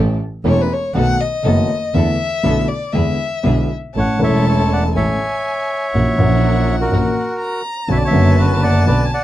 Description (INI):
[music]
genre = tango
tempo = 121 BPM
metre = 4/4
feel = rubato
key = A major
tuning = A4 = 439 Hz
[part]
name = dark upright piano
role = accompaniment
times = 0.0-9.1 s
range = E1 to A4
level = -17 LUFS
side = equal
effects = none
[part]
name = dark chamber string section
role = stabs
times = 0.0-9.1 s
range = B3 to B4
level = -27 LUFS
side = left 2 dB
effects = none
[part]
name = clear double bass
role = bass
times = 0.0-9.1 s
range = E1 to E2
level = -18 LUFS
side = right 1 dB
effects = none
[part]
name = warm violin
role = second line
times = 0.5-9.2 s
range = B4 to A#5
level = -23 LUFS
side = left 2 dB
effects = none
[part]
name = bandoneon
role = melody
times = 4.0-9.2 s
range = F#4 to G#5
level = -20 LUFS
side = equal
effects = none
[sound]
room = light reverb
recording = dark, warm production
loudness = -14 LUFS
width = side -14 dB against mid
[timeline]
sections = 0.0-4.0 A section; 4.0-9.2 B section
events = violin solo 0.0-4.0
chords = 0.0 A7; 1.0 B7; 1.9 E7sus4; 2.9 E7; 4.0 A; 5.9 F#7/A#; 7.9 Bmadd9